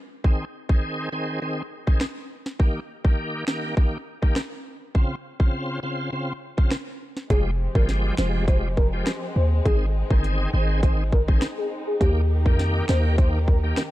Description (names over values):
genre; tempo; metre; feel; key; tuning
dancehall; 102 BPM; 4/4; straight; F minor; A4 = 440 Hz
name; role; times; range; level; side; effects
bright tonewheel organ; accompaniment; 0.2-13.8 s; Db3 to Ab4; -30 LUFS; equal; overdrive, chorus vibrato, slow rotary speaker
island pop drum kit; drums; 0.2-13.9 s; finger snaps, hi-hat, kick drum, rim click, snare drum; -21 LUFS; equal; none
warm velvety synth lead; melody; 7.3-13.6 s; G4 to C5; -30 LUFS; left 1 dB; chorus, ping-pong delay
dark studio string section; sustained chords; 7.3-13.9 s; Eb3 to Bb4; -34 LUFS; left 1 dB; sidechain pumping
hard-hitting 808-style bass; bass; 7.3-13.7 s; F1 to F2; -22 LUFS; equal; none
room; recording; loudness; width
little or no reverb; dark, warm production; -21 LUFS; side -16 dB against mid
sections
0.0-7.3 A section; 7.3-13.9 B section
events
none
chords
0.2 Ab; 2.6 Eb; 4.9 Dbmaj7; 7.3 Fmadd9; 9.7 Ab; 12.0 Eb